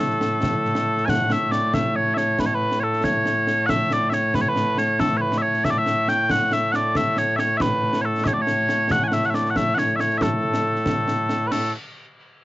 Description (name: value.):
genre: scottish traditional, Scottish pipe music.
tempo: 92 BPM (dotted quarters).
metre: 6/8.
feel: straight.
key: A major.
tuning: A4 = 440 Hz.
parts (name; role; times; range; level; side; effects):
mellow small bagpipes; melody; 0.0-11.7 s; A2 to G#5; -20 LUFS; equal; cassette tape.
concert snare drum, concert bass drum and clash cymbals; drums; 0.1-11.6 s; none; -26 LUFS; equal; none.
room: light reverb.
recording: home recording on cassette, nothing above 7.7 kHz.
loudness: -19 LUFS.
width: side -18 dB against mid.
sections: 0.0-1.1 A section; 1.1-11.5 B section.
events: none.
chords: none.